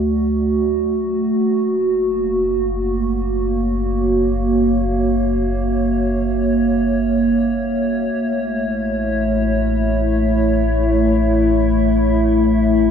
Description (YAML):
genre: ambient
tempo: free time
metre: none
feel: none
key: unclear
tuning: A4 = 440 Hz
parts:
  - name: warbly tape-like pad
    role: sustained chords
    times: 0.0-12.9 s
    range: A3 to F#5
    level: -16 LUFS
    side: right 1 dB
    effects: chorus, built-in reverb
  - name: round analog bass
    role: bass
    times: 0.0-12.9 s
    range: F#1 to D2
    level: -23 LUFS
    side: equal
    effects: none
room: wet huge ambient reverb, RT60 7.7 s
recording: dreamy mix soaked in reverb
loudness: -16 LUFS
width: side -7 dB against mid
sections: 0.0-12.9 A section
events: none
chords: 0.0 D; 1.4 F#7; 8.1 A